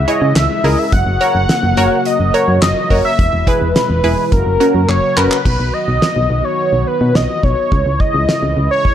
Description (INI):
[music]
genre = synth-pop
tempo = 106 BPM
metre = 4/4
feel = straight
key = B major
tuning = A4 = 439 Hz
[part]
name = octave-doubled lead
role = melody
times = 0.0-8.9 s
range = A#4 to F#5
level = -16 LUFS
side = left 1 dB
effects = chorus, phaser, analog delay
[part]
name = chorused pulse-width pad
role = sustained chords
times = 0.0-8.9 s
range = B2 to F#4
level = -22 LUFS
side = left 1 dB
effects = none
[part]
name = solid FM bass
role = bass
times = 0.0-8.7 s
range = E1 to C#3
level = -16 LUFS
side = equal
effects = none
[part]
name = funky polysynth comp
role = accompaniment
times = 0.1-5.4 s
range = C#4 to C#5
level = -18 LUFS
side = right 2 dB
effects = chorus
[part]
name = damped 70s drum kit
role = drums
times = 0.1-8.9 s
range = crash cymbal, handclaps, hi-hat, kick drum, snare drum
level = -17 LUFS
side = equal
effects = gated reverb
[sound]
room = light reverb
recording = none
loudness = -12 LUFS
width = side -10 dB against mid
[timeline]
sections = 0.0-5.5 A section; 5.5-8.9 B section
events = drum fill 4.9-5.5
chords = 0.0 C#m; 0.9 F#; 3.2 E; 4.3 F#; 5.5 B; 7.7 C#m